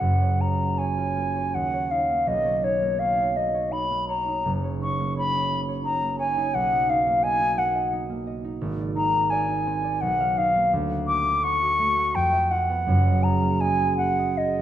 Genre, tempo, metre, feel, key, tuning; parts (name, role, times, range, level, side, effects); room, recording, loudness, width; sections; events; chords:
classical, impressionist duo for flute and harp; 73-89 BPM; 3/4; rubato; A4 = 439 Hz
mellow silver concert flute; melody; 0.0-14.6 s; C#5 to D6; -23 LUFS; left 1 dB
concert harp; accompaniment; 0.0-14.6 s; F#1 to F#5; -26 LUFS; right 2 dB
wet recital hall reverb, RT60 1.7 s; faint mains hum; -21 LUFS; side -11 dB against mid
0.0-14.6 A section
0.0 F#maj9; 1.5 D#m9; 2.3 Bmaj9; 4.5 F#6; 6.5 Bmaj7; 8.6 Ab; 10.0 Bmaj7#11; 10.7 Dmaj7; 12.1 Fmaj7#11; 12.9 Gb69